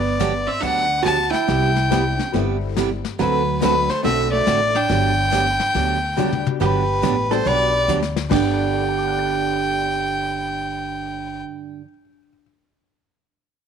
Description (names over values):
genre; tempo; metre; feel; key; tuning
country, western swing; 141 BPM; 4/4; swing 65% on 8ths; G major; A4 = 439 Hz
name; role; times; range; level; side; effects
clear fiddle; melody; 0.0-11.4 s; B4 to A5; -21 LUFS; left 2 dB; none
vintage hollow-body jazz guitar; second line; 0.0-11.4 s; F#3 to B4; -25 LUFS; right 11 dB; none
upright bass; bass; 0.0-11.4 s; G1 to D2; -25 LUFS; left 2 dB; none
picked steel-string acoustic guitar; accompaniment; 0.2-11.8 s; G2 to A4; -25 LUFS; right 11 dB; none
vintage brush drum kit; drums; 0.2-8.6 s; brushed snare drum, crash cymbal, hi-hat, kick drum, snare drum, toms; -28 LUFS; left 9 dB; none
honky-tonk upright piano; accompaniment; 1.9-12.4 s; G2 to D7; -28 LUFS; left 14 dB; none
room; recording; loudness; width
light reverb, small room ambience; 1960s-style stereo with parts hard left and right; -17 LUFS; side -7 dB against mid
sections
0.0-6.6 A section; 6.6-8.3 B section; 8.3-11.7 C section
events
drum fill 6.2-6.6, 7.9-8.3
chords
0.0 Gmaj7; 1.5 Cmaj7; 3.2 D7; 4.9 Gmaj7